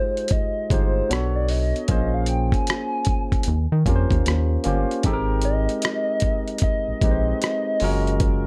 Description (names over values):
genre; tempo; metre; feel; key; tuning
R&B, neo-soul; 76 BPM; 4/4; swing 62% on 16ths; Ab major; A4 = 445 Hz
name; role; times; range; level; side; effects
hollow square lead; melody; 0.0-8.5 s; Bb4 to Ab5; -29 LUFS; equal; chorus, plate reverb
barky tine electric piano; accompaniment; 0.0-8.5 s; Ab3 to C#5; -29 LUFS; equal; plate reverb
dusty soul sampler-style drum kit; drums; 0.2-8.4 s; hi-hat, kick drum, rim click; -26 LUFS; equal; none
rubbery square bass; bass; 0.7-8.5 s; Gb1 to Eb3; -24 LUFS; equal; none
room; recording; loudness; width
light reverb; dark, warm production; -22 LUFS; mono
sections
0.0-5.0 A section; 5.0-8.5 A section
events
none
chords
0.0 Fm9; 1.1 Bm9; 1.9 Bbm9; 3.5 Eb13; 5.0 Abmaj7; 7.8 Gbmaj7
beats
0.31 1.10 | 1.89 2.68 3.47 4.26 | 5.04 5.83 6.62 7.41 | 8.20